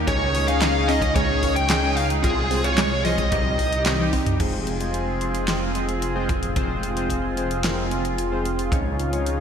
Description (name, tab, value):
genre	synthwave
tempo	111 BPM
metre	4/4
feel	straight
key	F minor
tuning	A4 = 440 Hz
part	chorused pulse-width pad	sustained chords	0.0-9.4 s	C4 to Ab4	-27 LUFS	right 1 dB	sidechain pumping
part	dark detuned saw bass	bass	0.0-9.4 s	F1 to Db2	-26 LUFS	equal	none
part	smooth overdriven lead guitar	melody	0.1-3.8 s	Ab4 to G5	-25 LUFS	equal	digital delay
part	string machine, violins	second line	0.1-3.8 s	Ab4 to G5	-30 LUFS	left 1 dB	ensemble chorus, digital delay
part	analog pluck	arpeggios	0.1-4.2 s	Eb3 to Ab4	-30 LUFS	right 1 dB	chorus, phaser, digital delay
part	chorused polysynth	stabs	0.1-9.4 s	G3 to F5	-29 LUFS	left 2 dB	digital delay
part	kick drum	drums	0.1-8.8 s	none	-27 LUFS	equal	none
part	pop drum kit	drums	0.1-9.4 s	crash cymbal, handclaps, hi-hat, snare drum, toms	-27 LUFS	equal	none
room	moderate lush hall reverb, RT60 2.3 s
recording	bright 1980s-style digital production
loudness	-20 LUFS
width	side -7 dB against mid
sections	0.0-4.4 A section; 4.4-9.4 B section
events	drum fill 3.9-4.4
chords	0.1 Dbsus2; 2.2 Fm/C; 3.3 Cm; 4.4 Fm; 8.7 Dbadd9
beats	| 0.07 0.62 1.16 1.70 | 2.24 2.78 3.32 3.86 | 4.40 4.94 5.48 6.02 | 6.56 7.10 7.64 8.18 | 8.72 9.26